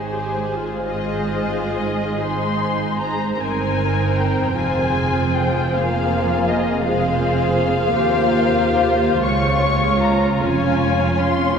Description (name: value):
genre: classical, slow romantic movement for string orchestra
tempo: 44-55 BPM (dotted quarters)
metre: 12/8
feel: rubato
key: Ab major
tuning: A4 = 440 Hz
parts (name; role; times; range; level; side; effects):
- muted symphonic violin section; second line; 0.0-11.6 s; F4 to Eb5; -23 LUFS; left 2 dB; none
- muted chamber viola section; accompaniment; 0.0-11.6 s; Ab3 to Ab4; -23 LUFS; equal; none
- muted studio cello section; bass; 0.0-11.6 s; Db2 to Ab2; -25 LUFS; right 3 dB; none
- muted symphonic double bass section; bass; 0.0-11.6 s; F1 to Eb2; -25 LUFS; right 2 dB; none
- muted studio violin section; melody; 0.9-11.6 s; C5 to Db6; -23 LUFS; left 4 dB; none
room: wet cathedral reverb, RT60 4.9 s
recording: none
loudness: -17 LUFS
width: side -6 dB against mid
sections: 0.0-11.6 A section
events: none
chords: 0.0 Ab; 4.6 Fm; 9.2 Db